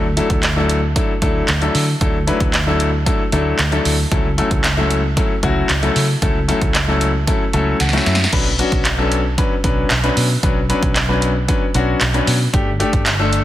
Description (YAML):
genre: dance-pop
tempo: 114 BPM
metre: 4/4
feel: straight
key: B minor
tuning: A4 = 440 Hz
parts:
  - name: clear baby grand piano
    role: accompaniment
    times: 0.0-13.4 s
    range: F#3 to A5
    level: -19 LUFS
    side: left 2 dB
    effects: sidechain pumping
  - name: vintage muted fingered electric bass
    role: bass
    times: 0.0-13.4 s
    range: G1 to D3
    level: -19 LUFS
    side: equal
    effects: sidechain pumping
  - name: punchy analog drum machine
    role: drums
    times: 0.2-13.4 s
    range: crash cymbal, handclaps, hi-hat, kick drum, snare drum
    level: -18 LUFS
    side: right 1 dB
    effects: none
room: light reverb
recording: dense, heavily limited modern master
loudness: -14 LUFS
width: side -13 dB against mid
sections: 0.0-8.3 A section; 8.3-13.4 A section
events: grand piano fill 7.3-8.3; drum fill 7.8-8.3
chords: 0.0 Dadd9; 4.1 A6/C#; 8.3 Bmadd9; 12.5 Gsus2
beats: 0.43 0.96 1.49 | 2.01 2.54 3.06 3.59 | 4.12 4.64 5.17 5.70 | 6.22 6.75 7.27 7.80 | 8.33 8.85 9.38 9.91 | 10.43 10.96 11.48 12.01 | 12.54 13.06